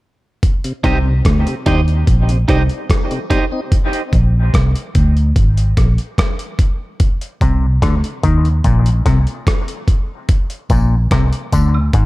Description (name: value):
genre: dub reggae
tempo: 73 BPM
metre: 4/4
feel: straight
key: C minor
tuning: A4 = 439 Hz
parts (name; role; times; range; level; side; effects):
- dusty soul sampler-style drum kit; drums; 0.4-12.1 s; hi-hat, kick drum, rim click; -15 LUFS; equal; overdrive
- tonewheel organ; accompaniment; 0.6-3.6 s; C3 to Eb4; -25 LUFS; left 1 dB; overdrive, slow rotary speaker, dub echo
- electric guitar at the edge of break-up; accompaniment; 0.8-3.4 s; Eb4 to Eb5; -22 LUFS; right 3 dB; dub echo
- overdriven clav; riff; 0.8-1.1, 7.4-12.1 s; Ab2 to Eb3; -21 LUFS; left 4 dB; auto-wah, dub echo
- vintage muted fingered electric bass; bass; 0.8-12.1 s; Ab1 to Eb2; -14 LUFS; equal; none
- tambourine and woodblock; percussion; 10.7-11.9 s; none; -32 LUFS; right 5 dB; none
room: digital ambience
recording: echo-heavy mix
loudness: -13 LUFS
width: side -19 dB against mid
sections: 0.4-12.1 A section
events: part muted 0.4-10.3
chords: 0.4 Cm; 3.7 Bb; 7.0 Cm; 10.3 Bb